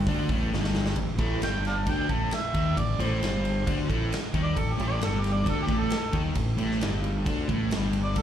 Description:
blues rock power trio and southern rock; 133 BPM; 4/4; straight; A4 = 445 Hz
crunchy overdriven guitar; riff; 0.0-8.2 s; G2 to D#4; -29 LUFS; left 1 dB; slapback echo
fuzz fingered electric bass; bass; 0.0-8.2 s; G1 to D#2; -29 LUFS; equal; overdrive
big rock drum kit; drums; 0.1-8.2 s; hi-hat, kick drum, ride cymbal, snare drum; -30 LUFS; equal
mellow harmonica; melody; 1.4-8.2 s; G4 to A5; -32 LUFS; right 2 dB; overdrive, slapback echo, analog delay
studio ambience; live gig heard through the venue's PA, club reverb, lossy compression artefacts; -24 LUFS; side -10 dB against mid
1.0-8.2 A section
drum fill 0.5-1.0; harmonica solo 1.0-8.2
0.0 D#maj7#11/G

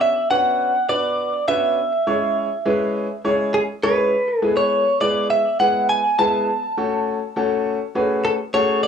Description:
pop; 102 BPM; 4/4; straight; A4 = 443 Hz
direct-recorded clean electric guitar; melody; 0.0-8.9 s; G#4 to A5; -19 LUFS; right 1 dB; analog delay
warm concert grand piano; accompaniment; 0.0-8.8 s; G#3 to C#5; -22 LUFS; left 1 dB; cassette tape
light reverb; home recording on cassette, small room ambience; -17 LUFS; side -7 dB against mid
0.0-8.8 A section
drop 0.0-8.8
0.0 Bmadd9; 1.8 C#m; 4.1 E; 6.5 F#madd9

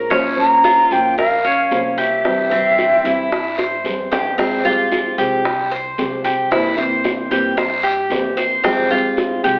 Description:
latin, Cuban son and guajira; 113 BPM; 4/4; straight; F harmonic minor from 4.4 s; A4 = 440 Hz
nylon-string guitar; accompaniment; 0.0-9.6 s; C3 to C5; -25 LUFS; equal
Cuban tres; arpeggios; 0.0-9.6 s; C4 to C5; -21 LUFS; equal
upright bass; bass; 0.0-9.6 s; Bb1 to G2; -42 LUFS; equal
bongos; percussion; 0.1-9.6 s; -26 LUFS; equal
guiro; percussion; 0.1-9.6 s; -34 LUFS; equal
breathy jazz flute; melody; 0.4-3.9 s; E5 to Bb5; -18 LUFS; equal
wet large studio reverb, RT60 1.2 s; worn, warbling old tape, cassette tape, warbly pitch drift, telephone sound; -17 LUFS; mono
0.0-4.4 A section; 4.4-9.6 B section
drum fill 3.6-4.4
0.1 Bbmadd9; 2.2 C; 4.4 Fmadd9; 6.5 C7; 8.6 Fmadd9

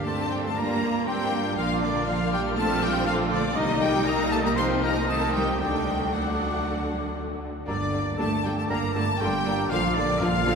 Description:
quick classical-period movement for symphony orchestra; 118 BPM; 4/4; straight; G minor; A4 = 441 Hz
rich studio violin section; melody; 0.0-10.6 s; D5 to C6; -30 LUFS; left 3 dB
rich studio violin section; second line; 0.0-10.5 s; Bb3 to G4; -33 LUFS; left 2 dB
warm oboe; second line; 0.0-10.6 s; D5 to C6; -33 LUFS; right 1 dB
dark French horn section; sustained chords; 0.0-10.6 s; A3 to Eb4; -34 LUFS; left 3 dB
rich studio double bass section; bass; 0.0-10.6 s; G1 to G2; -31 LUFS; right 3 dB
dark clarinet; second line; 0.1-10.6 s; D4 to C5; -34 LUFS; left 1 dB
small flute group; second line; 0.1-10.6 s; Bb5 to F6; -34 LUFS; left 1 dB
warm studio viola section; accompaniment; 0.1-10.6 s; D3 to C4; -31 LUFS; right 1 dB
warm studio cello section; bass; 0.1-10.6 s; D3 to C4; -32 LUFS; right 3 dB
wet cathedral reverb, RT60 5.2 s; recorded in a church or concert hall; -23 LUFS; side -5 dB against mid
0.0-10.6 A section
0.0 Gm; 1.6 Bb; 3.6 Cm7; 5.6 D; 7.7 Gm; 9.7 Bb

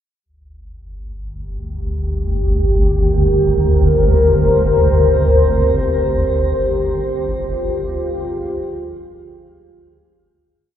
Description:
dark ambient drone; free time; G in sen; A4 = 440 Hz
deep dark ambient pad; sustained chords; 2.1-10.6 s; F4 to C5; -17 LUFS; equal; chorus, built-in reverb, shimmer reverb
swarming drone; drone; 1.1-10.8 s; G1 to D2; -17 LUFS; equal; built-in reverb, wide subtle chorus
wet huge ambient reverb, RT60 8.5 s; -14 LUFS; side -10 dB against mid
0.2-10.6 A section
filter sweep on synth drone 0.2-10.6; fade-out 5.4-10.6
0.2 Gm; 5.4 Ab/G

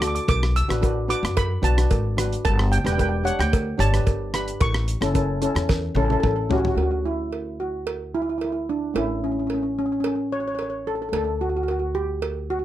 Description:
calypso; 110 BPM; 4/4; straight; D major; A4 = 440 Hz
steel pan; melody; 0.0-12.6 s; C#4 to E6; -26 LUFS; right 1 dB
steel pan; accompaniment; 0.0-12.6 s; A3 to C#5; -28 LUFS; left 1 dB
upright bass; bass; 0.0-12.6 s; E1 to F#2; -25 LUFS; equal
damped 70s drum kit; drums; 0.0-6.8 s; hi-hat, kick drum, rim click, snare drum, toms; -25 LUFS; left 1 dB
cowbell; percussion; 0.3-12.4 s; -31 LUFS; right 6 dB
light reverb; -21 LUFS; side -13 dB against mid
0.0-6.8 A section; 6.8-12.6 B section
drum fill 5.7-6.8
0.3 Bm; 2.4 G; 4.6 A; 6.8 D; 9.0 A; 11.1 D5

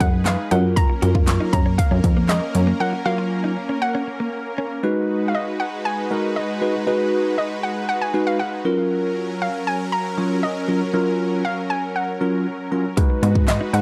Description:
dance-pop; 118 BPM; 4/4; straight; G# dorian; A4 = 439 Hz
hollow square pluck; melody; 0.0-13.8 s; D#5 to A#5; -28 LUFS; equal; chorus
supersaw pad; sustained chords; 0.0-13.8 s; F#3 to B4; -29 LUFS; equal; sidechain pumping
plucky analog bass; bass; 0.0-2.7, 13.2-13.8 s; E#2 to G#2; -21 LUFS; equal; sidechain pumping
pop drum kit; drums; 0.0-2.7, 13.0-13.8 s; handclaps, hi-hat, kick drum, snare drum; -22 LUFS; equal
bell-like tine electric piano; accompaniment; 0.5-13.5 s; F#3 to C#5; -24 LUFS; equal; phaser, sidechain pumping
direct-recorded clean electric guitar; riff; 0.9-4.7, 13.0-13.8 s; G#3 to F#4; -30 LUFS; equal; subtle chorus
digital ambience; dry, gritty hardware recording, transformer saturation; -21 LUFS; mono
0.0-4.8 A section; 4.8-13.8 B section
break 2.8-4.8
0.0 G#m7; 0.5 F#maj7; 4.8 G#m7; 8.7 F#maj7; 13.0 G#m7

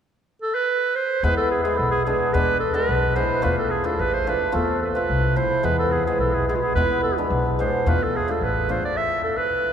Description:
klezmer; 109 BPM; 2/4; straight; E phrygian dominant; A4 = 441 Hz
clear clarinet; melody; 0.4-9.7 s; F4 to E5; -23 LUFS; right 2 dB
hammered dulcimer; accompaniment; 1.2-8.8 s; G#3 to F4; -24 LUFS; equal
upright bass; bass; 1.2-8.7 s; A1 to E2; -25 LUFS; left 1 dB
wet cathedral reverb, RT60 4.8 s; recorded in a church or concert hall; -19 LUFS; side -8 dB against mid
0.1-1.2 A section; 1.2-9.7 B section
0.1 N.C.; 1.2 E; 3.4 Dm/E; 4.5 F/E; 5.6 E; 7.9 Dm/E; 9.0 N.C.

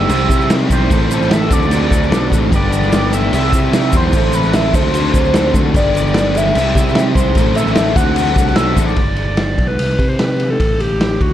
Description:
indie rock; 149 BPM; 4/4; straight; G major; A4 = 441 Hz
overdriven synth lead; melody; 0.0-11.3 s; F#4 to F#5; -19 LUFS; equal; distortion, phaser, slapback echo
mellow tonewheel organ; sustained chords; 0.0-9.0 s; F#4 to C6; -31 LUFS; equal
raw garage guitar; riff; 0.0-9.0 s; E3 to A4; -22 LUFS; left 9 dB; overdrive
raw garage guitar; riff; 0.0-9.0 s; G2 to F#4; -20 LUFS; right 6 dB; overdrive, lush chorus, slapback echo
modern bright picked electric bass; bass; 0.0-11.3 s; G1 to C3; -18 LUFS; equal
raw garage drum kit; drums; 0.1-11.3 s; crash cymbal, kick drum, ride cymbal, snare drum; -16 LUFS; equal
tube shaker; percussion; 0.1-8.9 s; -33 LUFS; right 7 dB
light reverb; dark, warm production; -12 LUFS; side -11 dB against mid
0.0-9.0 A section; 9.0-11.3 B section
0.1 Cmaj7; 0.9 Amadd9; 1.5 D7; 2.5 Gadd9; 3.3 C; 4.1 Amadd9; 4.7 D7; 5.7 Gadd9; 6.6 C; 7.4 Amadd9; 8.0 D7; 9.0 G; 9.8 Amadd9/C (rootless); 10.6 Gsus2/A

